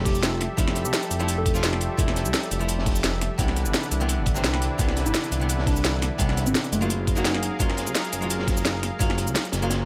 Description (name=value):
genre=liquid drum and bass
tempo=171 BPM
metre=4/4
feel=straight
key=F lydian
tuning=A4 = 438 Hz
part: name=archtop guitar, miked and amplified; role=accompaniment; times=0.0-9.9 s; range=C3 to Gb4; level=-33 LUFS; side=equal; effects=dub echo
part: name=warm analog pad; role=sustained chords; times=0.0-9.9 s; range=D4 to F5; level=-35 LUFS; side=equal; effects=chorus, sidechain pumping
part: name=smooth synth bass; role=bass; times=0.0-9.9 s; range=F1 to Db2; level=-29 LUFS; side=equal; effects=none
part: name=soft struck synth lead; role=melody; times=0.1-1.6, 5.1-7.5 s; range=A3 to A4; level=-34 LUFS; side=equal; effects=chorus, tremolo, cassette tape, dub echo
part: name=crunchy breakbeat drum kit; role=drums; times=0.1-9.8 s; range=hi-hat, snare drum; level=-36 LUFS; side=equal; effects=high-pass filter on hats, studio ambience, high-pass filter on snare, high-pass filter on room
part: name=drum and bass drum kit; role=drums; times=0.1-9.8 s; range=cabasa, hi-hat, snare drum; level=-30 LUFS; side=equal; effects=studio ambience
part: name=electronic kick drum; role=drums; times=0.1-9.1 s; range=none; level=-27 LUFS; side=equal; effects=studio ambience
room=little or no reverb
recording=none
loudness=-24 LUFS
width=mono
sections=0.0-9.9 A section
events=none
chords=0.0 Fmaj9; 3.4 Cmaj9; 6.9 Gbmaj9